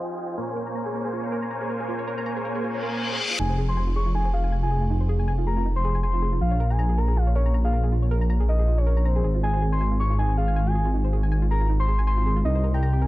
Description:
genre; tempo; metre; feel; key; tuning
future bass; 159 BPM; 4/4; swing 55% on 16ths, half-time; F minor; A4 = 440 Hz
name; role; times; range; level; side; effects
dense compressed supersaw; riff; 0.0-3.2 s; Bb3 to Ab5; -29 LUFS; equal; low-pass filter, tape echo
downlifter and reverse cymbal; sound effects; 0.0-0.4, 2.8-3.4 s; none; -30 LUFS; left 3 dB; none
soft round pluck; arpeggios; 0.4-13.0 s; Eb4 to Bb5; -33 LUFS; right 2 dB; chorus, tape echo
soft octave-layered synth lead; melody; 3.4-13.1 s; C5 to Db6; -29 LUFS; left 1 dB; chorus, tape echo
wide detuned saw bass; bass; 3.4-13.1 s; F1 to C2; -21 LUFS; equal; chorus
electronic crash cymbal; drums; 3.4-3.5 s; none; barely audible; none; none
room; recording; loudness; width
digital ambience; low-pass filter; -21 LUFS; side -17 dB against mid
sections
0.0-3.4 A section; 3.4-13.1 A section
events
filter sweep 0.0-3.4; reverse cymbal 2.8-3.4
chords
0.4 Bbm7; 3.2 N.C.; 3.4 Fm7; 6.4 Bbm7; 9.2 Ab6; 12.5 Cm7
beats
0.00 | 0.38 0.75 1.13 1.51 | 1.89 2.26 2.64 3.02 | 3.39 3.77 4.15 4.53 | 4.90 5.28 5.66 6.04 | 6.41 6.79 7.17 7.54 | 7.92 8.30 8.68 9.05 | 9.43 9.81 10.19 10.56 | 10.94 11.32 11.70 12.07 | 12.45 12.83

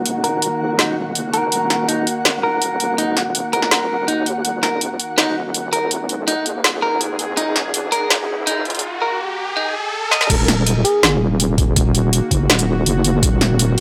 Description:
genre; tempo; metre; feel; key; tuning
half-time drum and bass; 164 BPM; 4/4; half-time; Eb minor; A4 = 440 Hz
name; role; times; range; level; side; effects
bowed-like drone; sustained chords; 0.0-13.8 s; Eb3 to Ab4; -29 LUFS; equal; built-in reverb, sidechain pumping
deep soft wobble bass; bass; 0.0-13.8 s; Eb1 to Eb2; -23 LUFS; equal; chorus, tube saturation, high-pass filter
flickering grainy texture; texture; 0.0-8.8 s; Gb5; -30 LUFS; equal; built-in reverb
drum and bass drum kit; drums; 0.1-13.8 s; crash cymbal, hi-hat, shaker, snare drum; -20 LUFS; equal; overdrive, high-pass filter on hats, small room ambience, high-pass filter on snare, high-pass filter on cymbals, high-pass filter on perc
clean electric guitar; arpeggios; 0.2-10.3 s; Eb4 to Eb5; -24 LUFS; equal; warbly pitch drift, low-pass filter, analog delay
riser; sound effects; 6.4-10.3 s; none; -29 LUFS; equal; none
electronic kick drum; drums; 10.3-13.3 s; none; -20 LUFS; equal; overdrive, small room ambience
soft struck synth lead; melody; 10.8-11.2 s; Ab4; -25 LUFS; equal; chorus, cassette tape, analog delay
room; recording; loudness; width
light reverb; dry, gritty hardware recording, high-pass filter; -18 LUFS; mono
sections
0.0-10.3 A section; 10.3-13.8 B section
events
build-up 0.0-10.3; filter sweep on clean electric guitar 0.0-10.3; riser 6.4-10.3; drum fill 10.1; drop 10.3-13.8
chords
0.0 Ebm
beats
| 0.06 0.42 0.79 1.15 | 1.52 1.89 2.25 2.62 | 2.98 3.35 3.71 4.08 | 4.45 4.81 5.18 5.54 | 5.91 6.28 6.64 7.01 | 7.37 7.74 8.10 8.47 | 8.84 9.20 9.57 9.93 | 10.30 10.66 11.03 11.40 | 11.76 12.13 12.49 12.86 | 13.23 13.59

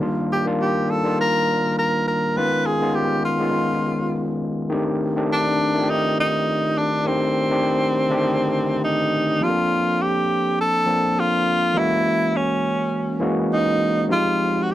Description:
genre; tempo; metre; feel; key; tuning
soul; 102 BPM; 4/4; swing 54% on 16ths; C dorian; A4 = 441 Hz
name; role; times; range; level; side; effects
overdriven tine electric piano; accompaniment; 0.0-14.7 s; D3 to D5; -22 LUFS; left 1 dB; tube saturation
breathy tenor saxophone; melody; 0.3-14.7 s; C4 to Cb5; -21 LUFS; equal; none
room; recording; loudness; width
moderate small room reverb, RT60 0.5 s; none; -18 LUFS; side -13 dB against mid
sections
0.0-9.4 A section; 9.4-14.7 B section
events
none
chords
0.0 Ebmaj9; 2.4 Db9; 4.7 Cm69; 9.4 Bbmaj9; 11.8 F#9; 14.1 Fm9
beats
| 0.02 0.60 1.19 1.78 | 2.37 2.95 3.54 4.13 | 4.71 5.30 5.89 6.48 | 7.06 7.65 8.24 8.82 | 9.41 9.99 10.58 11.17 | 11.75 12.34 12.93 13.51 | 14.10 14.69

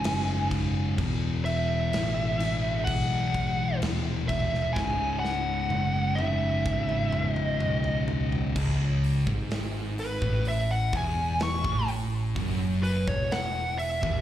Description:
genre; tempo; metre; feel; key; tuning
stoner and doom metal; 63 BPM; 4/4; straight; C# minor; A4 = 441 Hz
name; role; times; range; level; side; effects
fuzz lead guitar; melody; 0.0-14.2 s; B4 to C#6; -30 LUFS; equal; distortion, slapback echo, digital delay
thick fuzz guitar; riff; 0.0-14.2 s; C#2 to E3; -31 LUFS; left 5 dB; distortion
thick fuzz guitar; riff; 0.0-14.2 s; C#2 to E3; -33 LUFS; right 6 dB; distortion
overdriven picked electric bass; bass; 0.0-14.2 s; C#1 to B1; -30 LUFS; equal; tube saturation
big rock drum kit; drums; 0.0-14.2 s; crash cymbal, hi-hat, kick drum, snare drum, toms; -34 LUFS; right 1 dB; none
room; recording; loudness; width
studio reverb; live gig heard through the venue's PA, club reverb; -25 LUFS; side -12 dB against mid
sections
0.0-8.6 A section; 8.6-14.2 B section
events
drum fill 4.8-8.6; lead electric guitar solo 8.6-14.2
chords
0.0 C#5; 1.0 E5; 4.8 C#m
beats
0.04 | 0.98 1.93 2.88 3.82 | 4.77 5.72 6.66 7.61 | 8.56 9.51 10.46 11.41 | 12.37 13.32

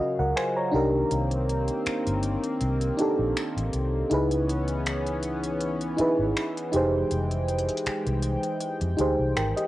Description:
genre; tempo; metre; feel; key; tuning
contemporary R&B; 80 BPM; 4/4; swing 54% on 16ths; unclear; A4 = 439 Hz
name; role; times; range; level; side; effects
mellow FM electric piano; accompaniment; 0.0-9.7 s; Db4 to Bb5; -26 LUFS; right 1 dB; chorus, cassette tape
chorused pulse-width pad; sustained chords; 0.0-9.7 s; Db3 to G5; -32 LUFS; left 1 dB; cassette tape
vintage muted fingered electric bass; bass; 0.0-9.5 s; F1 to F2; -28 LUFS; equal; none
smooth R&B drum kit; drums; 0.4-9.7 s; finger snaps, hi-hat; -34 LUFS; left 1 dB; overdrive, cassette tape
room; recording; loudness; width
light reverb, digital ambience; home recording on cassette; -24 LUFS; side -16 dB against mid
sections
0.0-9.7 A section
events
break 0.0-9.7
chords
0.0 Ebm9; 0.7 Cm9; 4.1 Dbm9; 6.7 Fm9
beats
0.36 | 1.11 1.86 2.61 3.36 | 4.11 4.86 5.61 6.36 | 7.11 7.86 8.61 9.36

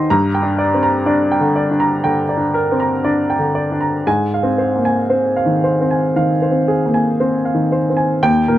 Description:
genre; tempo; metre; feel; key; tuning
neoclassical minimalist piano; 57-63 BPM; 4/4; rubato; unclear; A4 = 441 Hz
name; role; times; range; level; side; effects
warm upright piano; solo; 0.0-8.6 s; Eb2 to C6; -14 LUFS; equal; none
room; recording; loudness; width
light reverb; dry, close 1970s-style studio recording; -14 LUFS; side -13 dB against mid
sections
0.0-8.2 A section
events
none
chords
0.1 Gm; 4.1 Ab6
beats
| 0.08 1.05 2.03 3.04 | 4.06 5.11 6.14 7.19 | 8.23

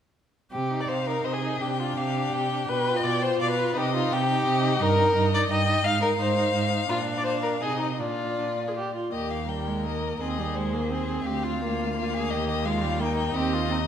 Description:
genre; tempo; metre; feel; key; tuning
quick classical-period movement for string quartet; 170 BPM; 3/4; rubato; C minor, Eb major from 4.8 s; A4 = 440 Hz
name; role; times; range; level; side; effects
warm violin; second line; 0.5-13.9 s; Eb4 to F5; -27 LUFS; left 2 dB; none
rich cello; bass; 0.5-13.9 s; D2 to C3; -29 LUFS; right 4 dB; none
rich viola; accompaniment; 0.7-13.8 s; G3 to Ab4; -31 LUFS; right 1 dB; none
rich violin; melody; 0.9-13.9 s; C5 to G5; -32 LUFS; left 8 dB; none
room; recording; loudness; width
moderate recital hall reverb, RT60 1.8 s; none; -23 LUFS; side -9 dB against mid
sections
0.5-9.1 A section; 9.1-13.9 B section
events
none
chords
0.5 Cm; 1.6 G5/C; 2.7 G7/B; 3.8 Cm; 4.8 Eb/G; 5.8 Fm7/Ab; 6.9 Bb; 7.6 Ab/C; 8.0 Bb; 9.1 Eb; 10.2 Abmaj9/Eb; 11.3 Bb/D; 12.3 Eb; 13.3 Cm/Eb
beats
| 0.52 0.89 1.24 | 1.60 1.97 2.32 | 2.68 3.04 3.40 | 3.75 4.10 4.45 | 4.80 5.15 5.50 | 5.85 6.20 6.55 | 6.90 7.26 7.63 | 8.00 8.39 8.77 | 9.14 9.50 9.86 | 10.21 10.57 10.91 | 11.27 11.62 11.96 | 12.31 12.65 13.00 | 13.35 13.70

